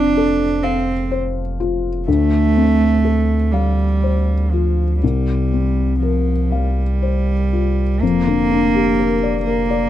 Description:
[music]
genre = neoclassical piano and strings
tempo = 41 BPM (dotted quarters)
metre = 6/8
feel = rubato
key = unclear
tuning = A4 = 440 Hz
[part]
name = clear cello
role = second line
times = 0.0-9.9 s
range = F3 to D4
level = -19 LUFS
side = right 5 dB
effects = none
[part]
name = felt-muted upright piano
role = accompaniment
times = 0.0-9.9 s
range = C2 to F5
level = -20 LUFS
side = left 7 dB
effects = none
[part]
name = punchy sub bass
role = bass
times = 0.0-9.9 s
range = F1 to D2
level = -19 LUFS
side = equal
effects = none
[sound]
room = light reverb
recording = dry, close 1970s-style studio recording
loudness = -15 LUFS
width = side -12 dB against mid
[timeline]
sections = 0.0-8.0 A section; 8.0-9.9 B section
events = none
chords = 0.0 F; 2.1 Dm7; 5.0 C7sus4; 8.0 Gm/F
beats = 0.63 | 2.07 3.53 | 5.02 6.52 | 8.02 9.47

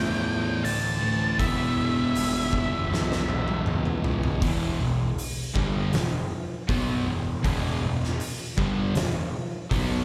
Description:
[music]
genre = stoner and doom metal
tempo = 79 BPM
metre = 4/4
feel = straight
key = E dorian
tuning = A4 = 440 Hz
[part]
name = octave-fuzz lead guitar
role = melody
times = 0.0-3.6 s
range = E5 to A5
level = -32 LUFS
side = equal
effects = distortion, slapback echo, digital delay
[part]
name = fuzz guitar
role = riff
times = 0.0-10.0 s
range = E2 to B3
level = -34 LUFS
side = equal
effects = none
[part]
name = raw garage guitar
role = riff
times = 0.0-10.0 s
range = E2 to E4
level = -38 LUFS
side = equal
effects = none
[part]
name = thick fuzz guitar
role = riff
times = 0.0-10.0 s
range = E2 to B3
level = -32 LUFS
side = equal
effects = distortion
[part]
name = fuzz picked electric bass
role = bass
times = 0.0-10.0 s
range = E1 to E2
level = -33 LUFS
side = equal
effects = overdrive
[part]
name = oversized low-tuned drum kit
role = drums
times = 0.6-9.9 s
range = hi-hat, kick drum, snare drum, toms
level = -32 LUFS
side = equal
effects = none
[sound]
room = little or no reverb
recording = live gig heard through the venue's PA, recital hall reverb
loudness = -26 LUFS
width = mono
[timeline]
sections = 0.0-4.4 A section; 4.4-10.0 B section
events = drum fill 2.9-4.4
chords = 0.0 A; 1.4 Em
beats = 0.64 | 1.39 2.15 2.90 3.66 | 4.42 5.17 5.93 6.68 | 7.44 8.20 8.95 9.71

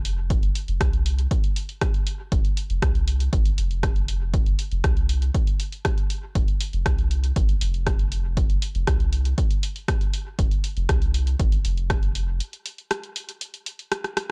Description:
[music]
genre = dub techno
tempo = 119 BPM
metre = 4/4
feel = straight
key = F minor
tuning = A4 = 442 Hz
[part]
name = soft dub sub bass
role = bass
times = 0.0-12.4 s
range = F1 to C2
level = -26 LUFS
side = equal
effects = sidechain pumping
[part]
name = punchy analog drum machine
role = drums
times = 0.1-14.3 s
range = hi-hat, rim click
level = -32 LUFS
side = equal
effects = small room ambience
[part]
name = electronic kick drum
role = drums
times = 0.3-12.0 s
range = none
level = -25 LUFS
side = equal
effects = small room ambience
[sound]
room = little or no reverb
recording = dry, gritty hardware recording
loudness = -24 LUFS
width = mono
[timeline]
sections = 0.0-14.3 A section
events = break 12.4-14.3; drum fill 14.0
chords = none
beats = | 0.30 0.81 1.31 1.81 | 2.32 2.82 3.33 3.83 | 4.34 4.84 5.34 5.85 | 6.35 6.86 7.36 7.87 | 8.37 8.87 9.38 9.88 | 10.39 10.89 11.39 11.90 | 12.40 12.91 13.41 13.92

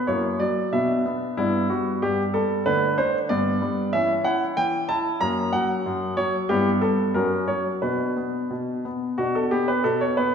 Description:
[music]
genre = classical-period piano sonatina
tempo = 92 BPM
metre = 2/4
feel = rubato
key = B minor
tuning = A4 = 444 Hz
[part]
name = clear baby grand piano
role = solo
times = 0.0-10.3 s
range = F#2 to A#5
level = -21 LUFS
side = equal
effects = none
[sound]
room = wet concert hall reverb, RT60 1.8 s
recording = recorded in a church or concert hall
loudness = -21 LUFS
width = side -7 dB against mid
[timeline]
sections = 0.0-9.2 A section; 9.2-10.3 A section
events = none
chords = 0.1 F#7; 0.7 Bm; 1.4 G; 2.7 D5; 3.3 G; 3.9 Em69; 5.2 F#; 6.5 Em/G; 7.1 F#; 7.8 Bm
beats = | 0.08 0.73 | 1.38 2.03 | 2.67 3.31 | 3.94 4.57 | 5.21 5.85 | 6.49 7.14 | 7.82 8.51 | 9.19 9.86

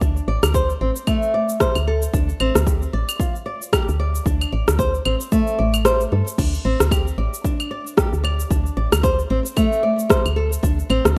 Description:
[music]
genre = organic downtempo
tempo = 113 BPM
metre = 4/4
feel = swing 57% on 16ths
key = unclear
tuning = A4 = 439 Hz
[part]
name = flamenco guitar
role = arpeggios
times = 0.0-11.0 s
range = A3 to D5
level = -25 LUFS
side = equal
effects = digital delay
[part]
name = woody FM bass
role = bass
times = 0.0-11.2 s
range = A1 to G2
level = -23 LUFS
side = equal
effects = sidechain pumping
[part]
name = deep house drum kit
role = drums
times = 0.0-11.1 s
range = claves, crash cymbal, rim click, shaker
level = -24 LUFS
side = equal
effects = overdrive
[part]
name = electronic kick drum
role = drums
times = 0.0-10.8 s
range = none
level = -24 LUFS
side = equal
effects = overdrive
[sound]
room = light reverb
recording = rough home demo mix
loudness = -20 LUFS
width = mono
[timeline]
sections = 0.0-11.2 A section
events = kick drops out 5.9-6.4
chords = 0.0 Csus2; 2.1 F (rootless); 6.4 Csus2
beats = | 0.01 0.55 1.08 1.61 | 2.14 2.67 3.20 3.73 | 4.26 4.79 5.32 5.86 | 6.39 6.92 7.45 7.98 | 8.51 9.04 9.57 10.10 | 10.63 11.16

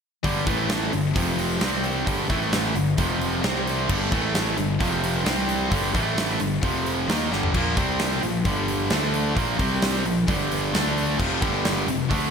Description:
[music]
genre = hard rock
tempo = 131 BPM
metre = 4/4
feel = straight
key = G dorian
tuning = A4 = 439 Hz
[part]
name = distorted electric guitar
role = riff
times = 0.2-12.3 s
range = F2 to Eb4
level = -26 LUFS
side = right 10 dB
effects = overdrive
[part]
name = heavy high-gain guitar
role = riff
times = 0.2-12.3 s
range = F2 to Eb4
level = -27 LUFS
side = left 10 dB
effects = distortion
[part]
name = fuzz picked electric bass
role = bass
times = 0.2-12.3 s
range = F1 to Eb2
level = -28 LUFS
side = equal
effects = overdrive
[part]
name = big rock drum kit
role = drums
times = 0.2-12.2 s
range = crash cymbal, hi-hat, kick drum, snare drum, toms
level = -26 LUFS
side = equal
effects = gated reverb
[sound]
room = moderate lush hall reverb, RT60 1.7 s, small room reverb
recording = bright 1980s-style digital production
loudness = -21 LUFS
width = side -6 dB against mid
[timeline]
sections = 0.2-12.3 A section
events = drum fill 7.3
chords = 0.2 G5; 0.5 A5; 0.9 G5; 1.1 F5; 1.6 C5; 2.1 G5; 2.3 A5; 2.7 G5; 3.0 F5; 3.4 C5; 3.9 G5; 4.1 A5; 4.6 G5; 4.8 F5; 5.3 C5; 5.7 G5; 5.9 A5; 6.4 G5; 6.6 F5; 7.1 Gm; 7.5 Bb5; 7.8 C5; 8.2 Bb5; 8.4 G5; 8.9 D5; 9.4 Bb5; 9.6 C5; 10.0 Bb5; 10.3 G5; 10.7 D5; 11.2 F5; 11.4 G5; 11.9 F5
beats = | 0.24 0.69 1.15 1.60 | 2.06 2.52 2.97 3.43 | 3.88 4.34 4.79 5.25 | 5.71 6.17 6.62 7.08 | 7.54 7.99 8.45 8.91 | 9.36 9.82 10.28 10.73 | 11.19 11.65 12.11

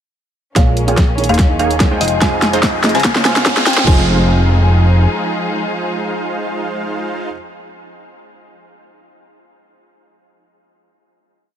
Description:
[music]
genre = future bass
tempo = 145 BPM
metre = 4/4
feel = swing 54% on 16ths, half-time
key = F minor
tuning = A4 = 444 Hz
[part]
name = felt-muted upright piano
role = accompaniment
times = 0.5-7.3 s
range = Bb2 to Eb5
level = -25 LUFS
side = right 5 dB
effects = none
[part]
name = mallet-like synth pluck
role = melody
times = 0.6-7.3 s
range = Eb5 to Ab5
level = -22 LUFS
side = equal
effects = chorus, sidechain pumping, tape echo
[part]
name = muted studio string section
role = sustained chords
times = 0.6-7.3 s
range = Db3 to Ab4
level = -25 LUFS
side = left 3 dB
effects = sidechain pumping
[part]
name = supersaw stab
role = riff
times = 0.6-7.3 s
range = Ab3 to C6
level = -20 LUFS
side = right 1 dB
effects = sidechain pumping, low-pass filter, tape echo
[part]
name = fat analog bass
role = bass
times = 0.6-5.1 s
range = Eb1 to Db2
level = -15 LUFS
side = equal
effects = sidechain pumping
[part]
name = big-room dance drum kit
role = drums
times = 0.6-4.0 s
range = crash cymbal, hi-hat, snare drum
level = -18 LUFS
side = equal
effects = overdrive
[part]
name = electronic kick drum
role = drums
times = 0.6-4.0 s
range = none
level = -14 LUFS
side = equal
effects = none
[part]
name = riser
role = sound effects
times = 1.9-3.9 s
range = none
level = -23 LUFS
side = right 1 dB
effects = none
[sound]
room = light reverb, digital ambience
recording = high-pass filter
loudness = -12 LUFS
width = side -9 dB against mid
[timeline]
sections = 0.6-3.9 build; 3.9-7.2 final chord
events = build-up 0.6-3.9; drum fill 0.6-3.9; filter sweep on supersaw synth 0.6-3.9; filter sweep 0.6-3.9; riser 1.9-3.9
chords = 0.6 Bbm7; 1.2 Eb7sus4; 2.0 Fm7; 3.0 Dbmaj7; 3.9 Fm7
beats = | 0.56 0.97 1.39 1.80 | 2.22 2.63 3.04 3.46 | 3.87 4.29 4.70 5.11 | 5.53 5.94 6.35 6.77

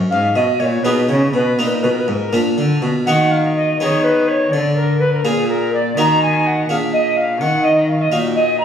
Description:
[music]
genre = classical, baroque-style sonata movement with continuo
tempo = 83 BPM (dotted quarters)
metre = 6/8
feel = straight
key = Eb minor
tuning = A4 = 440 Hz
[part]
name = harpsichord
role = accompaniment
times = 0.0-8.6 s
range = Ab2 to Ab4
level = -20 LUFS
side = equal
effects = none
[part]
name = rich cello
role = bass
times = 0.0-8.6 s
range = Gb2 to Eb3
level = -19 LUFS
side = equal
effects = none
[part]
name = mellow alto recorder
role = melody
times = 0.1-8.6 s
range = Ab4 to Bb5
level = -17 LUFS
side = equal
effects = none
[sound]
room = moderate studio ambience, RT60 0.5 s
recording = recorded on a phone in the room, club reverb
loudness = -14 LUFS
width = side -8 dB against mid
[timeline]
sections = 0.0-3.1 A section; 3.1-8.6 A section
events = none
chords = 0.1 Abm; 1.6 Bbsus4; 2.3 Bb; 3.1 Ebm; 3.8 Abm/Eb; 4.5 Bb7/D; 6.0 Ebm; 6.7 Bb7; 7.4 Ebm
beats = | 0.11 0.84 | 1.58 2.33 | 3.07 3.81 | 4.53 5.25 | 5.97 6.69 | 7.41 8.12

